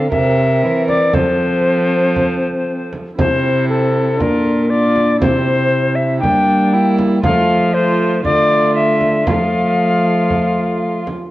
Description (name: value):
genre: classical, renaissance-style consort dance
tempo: 118 BPM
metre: 4/4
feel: straight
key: unclear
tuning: A4 = 441 Hz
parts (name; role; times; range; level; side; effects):
- mellow alto recorder; melody; 0.0-11.1 s; A4 to G5; -17 LUFS; left 2 dB; none
- warm viola; second line; 0.0-11.1 s; D4 to Bb4; -23 LUFS; right 4 dB; none
- warm trombone; accompaniment; 0.0-11.0 s; A3 to D4; -20 LUFS; equal; none
- warm cello; bass; 0.0-11.1 s; Bb2 to G3; -19 LUFS; right 1 dB; none
- frame drum; percussion; 0.1-11.3 s; none; -22 LUFS; right 2 dB; none
room: moderate recital hall reverb, RT60 1.8 s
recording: worn, warbling old tape, cassette tape, warbly pitch drift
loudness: -12 LUFS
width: side -16 dB against mid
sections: 0.0-11.3 A section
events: none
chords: 0.1 C7; 1.1 F; 3.2 C; 4.2 Bb; 5.2 C; 6.2 Gm; 7.2 F; 8.2 Dm; 9.3 F